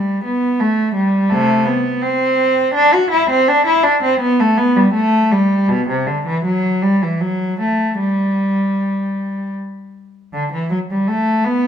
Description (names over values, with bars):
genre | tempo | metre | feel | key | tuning
classical, baroque-style suite movement for unaccompanied cello | 76-86 BPM | 3/4 | rubato | G major | A4 = 440 Hz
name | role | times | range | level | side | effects
warm cello | solo | 0.0-11.7 s | B2 to F#4 | -14 LUFS | equal | none
room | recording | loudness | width
moderate recital hall reverb, RT60 1.5 s | minimal, uncompressed stereo recording | -14 LUFS | side -8 dB against mid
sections
0.0-10.3 A section; 10.3-11.7 B section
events
none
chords
none